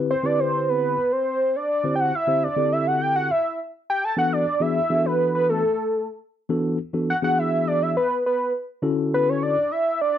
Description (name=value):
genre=funk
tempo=103 BPM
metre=4/4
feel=straight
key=unclear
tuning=A4 = 441 Hz
part: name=mellow tine electric piano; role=accompaniment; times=0.0-9.6 s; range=D3 to C5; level=-24 LUFS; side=left 2 dB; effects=slow stereo tremolo
part: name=fat analog lead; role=melody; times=0.1-10.2 s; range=A4 to A5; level=-21 LUFS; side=right 1 dB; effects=chorus, slapback echo
room=light reverb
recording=dry, close 1970s-style studio recording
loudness=-20 LUFS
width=side -10 dB against mid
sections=0.0-8.8 A section; 8.8-10.2 B section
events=analog synth lead solo 0.0-8.8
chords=0.0 D9sus4; 4.2 E9sus4; 8.8 Dmaj9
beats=0.10 0.68 1.26 | 1.84 2.43 3.01 3.59 | 4.17 4.76 5.34 5.92 | 6.50 7.09 7.67 8.25 | 8.83 9.42 10.00